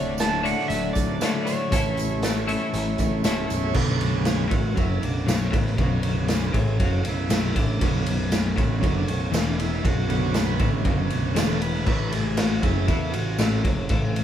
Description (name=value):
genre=psychedelic rock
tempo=118 BPM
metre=4/4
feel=straight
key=B minor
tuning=A4 = 436 Hz
part: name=clean lap steel guitar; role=melody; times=0.0-3.2 s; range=C#5 to A5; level=-29 LUFS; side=right 3 dB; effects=none
part: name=overdriven combo organ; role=sustained chords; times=0.0-14.2 s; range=D3 to F#5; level=-30 LUFS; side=right 6 dB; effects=none
part: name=twelve-string electric guitar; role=riff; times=0.0-14.2 s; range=B1 to A4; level=-26 LUFS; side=left 3 dB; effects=harmonic tremolo
part: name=fuzz picked electric bass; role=bass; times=0.0-14.2 s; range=B0 to E2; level=-28 LUFS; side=equal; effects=overdrive
part: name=raw garage drum kit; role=drums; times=0.2-14.2 s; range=crash cymbal, hi-hat, kick drum, ride cymbal, snare drum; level=-25 LUFS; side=equal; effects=none
part: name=tambourine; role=percussion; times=0.2-13.5 s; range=none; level=-39 LUFS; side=right 8 dB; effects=none
room=light reverb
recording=band playing live in one room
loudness=-21 LUFS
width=side -10 dB against mid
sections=0.0-3.8 A section; 3.8-14.2 B section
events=transistor combo organ solo 3.8-14.2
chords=0.0 D; 1.7 A6; 3.8 Bmadd9; 11.9 A5